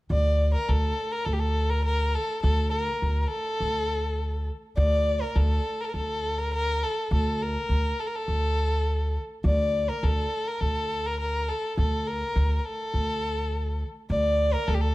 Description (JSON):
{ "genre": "Arabic maqam ensemble", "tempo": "103 BPM", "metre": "4/4", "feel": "straight", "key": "unclear", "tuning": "A4 = 440 Hz", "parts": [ { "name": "rich violin", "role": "melody", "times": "0.1-14.9 s", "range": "G4 to D5", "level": "-28 LUFS", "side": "left 1 dB", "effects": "none" }, { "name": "upright bass", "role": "bass", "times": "0.1-14.9 s", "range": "D2", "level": "-25 LUFS", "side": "equal", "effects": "none" } ], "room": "light reverb", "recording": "dark, warm production", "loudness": "-24 LUFS", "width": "side -18 dB against mid", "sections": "0.1-14.9 A section", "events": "none", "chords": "none" }